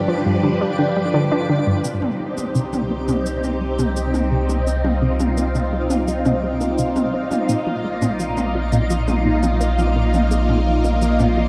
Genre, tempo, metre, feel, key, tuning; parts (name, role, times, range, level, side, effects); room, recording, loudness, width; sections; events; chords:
ambient, sequencer-driven space music; 85 BPM; 4/4; straight; C minor; A4 = 440 Hz
phased string machine; sustained chords; 0.0-11.5 s; G2 to G5; -24 LUFS; equal; ensemble chorus, phaser
soft round pluck; arpeggios; 0.0-11.5 s; C4 to G5; -37 LUFS; equal
twinkling granular texture; texture; 0.0-11.5 s; D5; -37 LUFS; equal; built-in reverb
analog pluck; riff; 0.1-11.4 s; G2 to D4; -25 LUFS; equal; chorus, analog delay
round analog bass; bass; 1.8-11.5 s; Bb1 to C2; -24 LUFS; equal
electronic cabasa and toms; percussion; 1.8-11.3 s; -28 LUFS; equal; analog delay
wet huge ambient reverb, RT60 8.1 s; dark, warm production; -20 LUFS; mono
0.0-1.8 A section; 1.8-11.5 B section
filter sweep on synth arpeggio sound 1.8-11.5
0.0 G7; 1.8 Cm; 7.5 Bbsus4